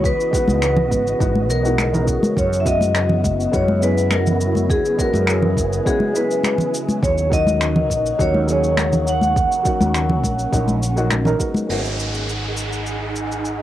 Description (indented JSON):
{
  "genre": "sunset chillout",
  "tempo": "103 BPM",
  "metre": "4/4",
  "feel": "straight",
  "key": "G# minor",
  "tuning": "A4 = 440 Hz",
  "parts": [
    { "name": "vibraphone with hard mallets", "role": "melody", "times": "0.0-11.1 s", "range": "G#4 to F#5", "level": "-21 LUFS", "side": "left 1 dB", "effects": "cassette tape, tape echo" },
    { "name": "dark baby grand piano", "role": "accompaniment", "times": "0.0-13.6 s", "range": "F#3 to A#4", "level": "-26 LUFS", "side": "equal", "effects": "auto-pan, low-pass filter, cassette tape" },
    { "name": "soft string machine", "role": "sustained chords", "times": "0.0-13.6 s", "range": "C#3 to B5", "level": "-26 LUFS", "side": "right 1 dB", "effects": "phaser, ensemble chorus, cassette tape" },
    { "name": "mellow fretless electric bass", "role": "bass", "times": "0.0-13.6 s", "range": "F#1 to F#2", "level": "-22 LUFS", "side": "equal", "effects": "ensemble chorus" },
    { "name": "electronic kick drum", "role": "drums", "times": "0.0-11.5 s", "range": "none", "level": "-23 LUFS", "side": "equal", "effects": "overdrive, cassette tape" },
    { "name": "jazz brush drum kit", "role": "drums", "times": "0.0-13.6 s", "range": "cabasa, crash cymbal, finger snaps", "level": "-26 LUFS", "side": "equal", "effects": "cassette tape" },
    { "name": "congas", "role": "percussion", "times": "0.5-11.7 s", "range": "none", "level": "-22 LUFS", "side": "equal", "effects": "none" },
    { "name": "downlifter", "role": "sound effects", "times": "11.7-13.6 s", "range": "none", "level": "-28 LUFS", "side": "equal", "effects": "none" }
  ],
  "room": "moderate small room reverb, RT60 0.5 s",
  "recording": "home recording on cassette",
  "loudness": "-16 LUFS",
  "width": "side -12 dB against mid",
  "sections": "0.0-11.7 A section; 11.7-13.6 B section",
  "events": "filter sweep on grand piano 11.7-13.6",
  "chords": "0.0 C#m11; 2.4 F#7sus4; 7.0 D#m7; 11.7 G#m7"
}